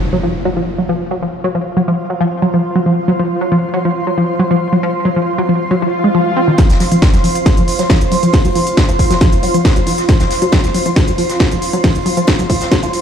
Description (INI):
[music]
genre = driving peak-time techno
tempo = 137 BPM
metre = 4/4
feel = straight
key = unclear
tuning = A4 = 440 Hz
[part]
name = impact and swell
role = sound effects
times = 0.0-1.3, 5.9-6.6 s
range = none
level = -22 LUFS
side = equal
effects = none
[part]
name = granular cloud pad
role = texture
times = 0.4-13.0 s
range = F4 to C6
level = -19 LUFS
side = right 1 dB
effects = built-in reverb, sidechain pumping
[part]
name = tight sequenced synth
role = riff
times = 0.1-12.9 s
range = Eb3 to C4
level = -16 LUFS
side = left 1 dB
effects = chorus, phaser, overdrive, sidechain pumping, ping-pong delay
[part]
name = electronic kick drum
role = drums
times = 6.6-12.8 s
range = none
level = -13 LUFS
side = equal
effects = none
[part]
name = natural country drum kit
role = drums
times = 6.6-13.0 s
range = hi-hat, snare drum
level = -28 LUFS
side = left 1 dB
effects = high-pass filter on hats, high-pass filter on snare, high-pass filter on room
[part]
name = techno drum kit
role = drums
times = 6.6-13.0 s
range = hi-hat, snare drum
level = -20 LUFS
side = equal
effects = sidechain pumping on hats
[sound]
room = moderate huge ambient reverb, RT60 5.2 s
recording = played on a big sound system in a bare room, stone room reverb, high-pass filter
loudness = -11 LUFS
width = side -8 dB against mid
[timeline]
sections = 0.0-6.6 A section; 6.6-13.0 B section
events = impact 0.0-1.3; filter sweep on synth arpeggio sound 0.0-6.6, 6.6-13.0; swell 5.9-6.6; build-up 6.6-13.0; drum fill 6.6-13.0; filter sweep 6.6-13.0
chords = 0.0 F5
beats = 0.01 0.45 0.89 | 1.33 1.77 2.20 2.64 | 3.08 3.52 3.96 4.39 | 4.83 5.27 5.71 6.15 | 6.58 7.02 7.46 7.90 | 8.34 8.77 9.21 9.65 | 10.09 10.53 10.96 11.40 | 11.84 12.28 12.71